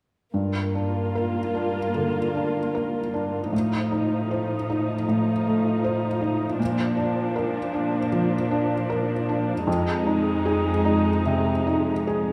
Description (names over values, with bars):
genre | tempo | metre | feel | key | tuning
cinematic, emotional film score for orchestra | 77 BPM | 4/4 | uneven beats, rubato | unclear | A4 = 441 Hz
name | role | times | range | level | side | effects
dark symphonic viola section | accompaniment | 0.3-12.3 s | F3 to F4 | -29 LUFS | equal | none
felt-muted upright piano | accompaniment | 0.3-12.3 s | F2 to C5 | -28 LUFS | equal | none
warm symphonic cello section | bass | 0.3-12.3 s | F2 to Bb2 | -31 LUFS | equal | none
room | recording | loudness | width
moderate scoring stage reverb, RT60 1.6 s | none | -24 LUFS | mono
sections
0.3-12.3 A section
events
none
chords
0.3 Gm7; 3.5 F7/A; 6.6 Bb; 9.7 Fm7